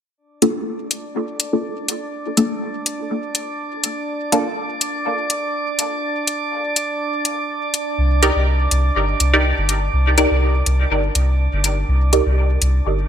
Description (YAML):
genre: dub techno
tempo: 123 BPM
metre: 4/4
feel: swing 55% on 16ths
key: unclear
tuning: A4 = 440 Hz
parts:
  - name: drifting glass-harmonics texture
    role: texture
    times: 1.0-13.1 s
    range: D4 to D5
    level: -25 LUFS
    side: right 2 dB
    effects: chorus, built-in reverb
  - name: filtered dub chord stab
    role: stabs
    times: 0.4-4.5, 8.2-12.3 s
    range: Bb3 to D5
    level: -20 LUFS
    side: equal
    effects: phaser, dub echo
  - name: electronic hi-hat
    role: drums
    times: 0.4-12.7 s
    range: none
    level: -20 LUFS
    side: left 2 dB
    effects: overdrive
  - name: soft dub sub bass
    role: bass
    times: 8.0-13.1 s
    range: G1 to C2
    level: -17 LUFS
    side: equal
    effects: none
room: light reverb, digital ambience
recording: bright 1980s-style digital production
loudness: -17 LUFS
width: side -9 dB against mid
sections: 0.2-13.1 A section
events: none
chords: 0.2 Bbmaj7; 8.0 Cm9